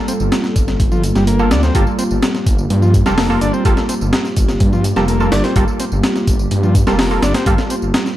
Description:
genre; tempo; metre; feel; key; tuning
breakbeat, breaks; 126 BPM; 4/4; straight; unclear; A4 = 440 Hz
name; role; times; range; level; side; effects
dark analog pad; sustained chords; 0.0-8.2 s; G3 to A4; -20 LUFS; right 1 dB; chorus, sidechain pumping
combo organ; riff; 0.1-7.8 s; F3 to D4; -21 LUFS; left 1 dB; tube saturation, dub echo
breakbeat sampler-style drum kit; drums; 0.1-8.2 s; hi-hat, kick drum, snare drum; -16 LUFS; equal; none
tambourine; drums; 0.1-8.2 s; none; -33 LUFS; right 2 dB; none
detuned saw bass; bass; 0.2-7.9 s; F1 to G2; -17 LUFS; equal; tube saturation
orchestra-hit-like synth stab; stabs; 1.4-7.6 s; Bb3 to A4; -23 LUFS; right 1 dB; built-in reverb, dub echo
room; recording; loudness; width
little or no reverb; vinyl crackle; -12 LUFS; side -14 dB against mid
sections
0.0-8.2 A section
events
none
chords
0.0 Gm9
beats
0.32 0.80 1.27 | 1.75 2.23 2.70 3.18 | 3.65 4.13 4.61 5.08 | 5.56 6.04 6.51 6.99 | 7.46 7.94

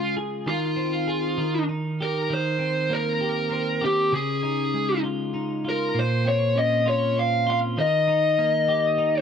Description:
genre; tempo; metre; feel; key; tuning
pop; 66 BPM (dotted quarters); 6/8; straight; unclear; A4 = 440 Hz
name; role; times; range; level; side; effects
bluesy overdriven lead guitar; melody; 0.0-9.2 s; F4 to F5; -23 LUFS; left 1 dB; distortion
twelve-string electric guitar; accompaniment; 0.0-9.2 s; Bb2 to Ab4; -26 LUFS; right 1 dB; none
room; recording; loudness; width
light reverb; dark, warm production; -21 LUFS; side -7 dB against mid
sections
0.0-2.3 A section; 2.3-9.2 B section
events
none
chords
0.5 Ab/Eb; 1.4 Eb; 2.3 Eb6; 4.1 Dbadd9; 5.9 Bbmadd9; 7.8 Eb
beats
| 0.47 1.38 | 2.29 3.21 | 4.12 5.03 | 5.95 6.86 | 7.77 8.69

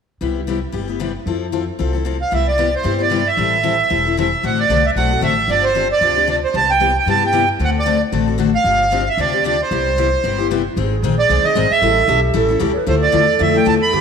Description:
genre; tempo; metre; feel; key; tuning
acoustic string swing (jazz manouche); 228 BPM; 4/4; swing 57% on 8ths; C major; A4 = 444 Hz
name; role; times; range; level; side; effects
picked steel-string acoustic guitar; accompaniment; 0.2-14.0 s; C3 to A4; -20 LUFS; left 9 dB; none
upright bass; bass; 0.2-14.0 s; E1 to G2; -22 LUFS; equal; none
accordion; melody; 2.2-14.0 s; C5 to B5; -16 LUFS; right 4 dB; none
breathy clarinet; second line; 10.8-14.0 s; G4 to C#5; -20 LUFS; right 6 dB; none
room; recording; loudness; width
wet echo chamber reverb, RT60 2.0 s, small room reverb; 1960s-style stereo with parts hard left and right; -14 LUFS; side -6 dB against mid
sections
0.2-2.3 A section; 2.3-10.8 B section; 10.8-14.0 C section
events
none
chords
0.2 Cmaj7; 1.3 Fmaj7; 2.3 Cmaj7; 3.4 Am7; 4.4 D7/A; 5.5 G7sus4; 6.5 Cmaj7; 7.6 D7; 8.7 G7sus4; 9.7 Cmaj7; 10.8 Ab; 11.8 A7; 12.9 Dmadd9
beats
| 0.21 0.47 0.74 1.00 | 1.27 1.53 1.79 2.06 | 2.32 2.58 2.85 3.11 | 3.37 3.64 3.90 4.16 | 4.43 4.69 4.96 5.22 | 5.48 5.75 6.01 6.27 | 6.54 6.80 7.07 7.33 | 7.59 7.86 8.12 8.39 | 8.65 8.92 9.18 9.45 | 9.71 9.97 10.24 10.50 | 10.77 11.03 11.29 11.56 | 11.82 12.09 12.35 12.61 | 12.88 13.14 13.40 13.67 | 13.93

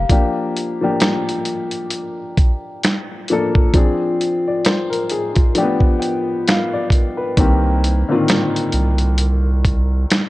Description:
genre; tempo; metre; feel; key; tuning
lo-fi hip hop; 66 BPM; 4/4; swing 56% on 16ths; unclear; A4 = 439 Hz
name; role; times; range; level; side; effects
warm upright piano; accompaniment; 0.0-10.3 s; D3 to G5; -19 LUFS; left 2 dB; low-pass filter
saturated sub bass; bass; 0.0-0.1, 7.4-10.1 s; C2; -16 LUFS; equal; none
dusty soul sampler-style drum kit; drums; 0.1-10.3 s; finger snaps, hi-hat, kick drum, snare drum; -16 LUFS; equal; none
room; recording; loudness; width
light reverb; dark, warm production; -15 LUFS; side -18 dB against mid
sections
0.1-10.3 A section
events
none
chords
0.1 Gm7; 3.7 Dm7b5; 5.6 G7; 7.4 Cm7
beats
| 0.10 1.01 1.92 2.83 | 3.73 4.64 5.55 6.46 | 7.37 8.28 9.19 10.10

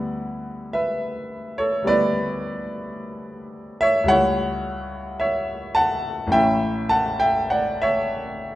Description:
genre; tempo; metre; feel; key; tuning
classical, romantic nocturne for solo piano; 54 BPM; 4/4; rubato; unclear; A4 = 442 Hz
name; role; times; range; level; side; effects
clear grand piano; solo; 0.0-8.6 s; A1 to A5; -20 LUFS; equal; none
room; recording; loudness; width
wet recital hall reverb, RT60 1.5 s; none; -20 LUFS; side -15 dB against mid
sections
0.0-8.6 A section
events
none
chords
0.0 Em7/D; 4.1 A7/C#; 6.4 A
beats
0.76 1.90 3.01 | 4.12 5.23 6.35 7.54

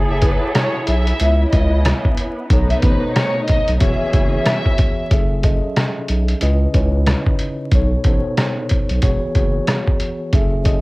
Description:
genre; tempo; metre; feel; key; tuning
hip hop, boom-bap hip-hop; 92 BPM; 4/4; swing 61% on 16ths; unclear; A4 = 440 Hz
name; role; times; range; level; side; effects
muted studio string section; sustained chords; 0.0-5.1 s; C#3 to A4; -24 LUFS; equal; high-pass filter, low-pass filter, cassette tape
saturated sub bass; bass; 0.0-10.8 s; E1 to C#2; -18 LUFS; equal; none
warm chamber violin section; melody; 0.1-5.1 s; B4 to E5; -23 LUFS; equal; high-pass filter, low-pass filter, cassette tape
trip hop sampler-style drum kit; drums; 0.2-10.8 s; hi-hat, kick drum, rim click, snare drum; -17 LUFS; equal; none
mellow tine electric piano; accompaniment; 2.5-10.8 s; B2 to E5; -22 LUFS; equal; medium stereo tremolo, cassette tape, high-pass filter, low-pass filter
room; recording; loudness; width
little or no reverb; home recording on cassette, vinyl crackle; -15 LUFS; side -22 dB against mid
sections
0.0-5.1 A section; 5.1-10.8 B section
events
break 0.0-2.5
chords
0.0 F#m9; 1.2 C#m7; 2.5 B7; 3.8 E6; 5.1 F#m9; 6.4 C#m7; 7.7 B7; 9.0 E6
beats
0.55 1.20 1.85 | 2.50 3.16 3.81 4.46 | 5.11 5.76 6.42 7.07 | 7.72 8.37 9.03 9.68 | 10.33

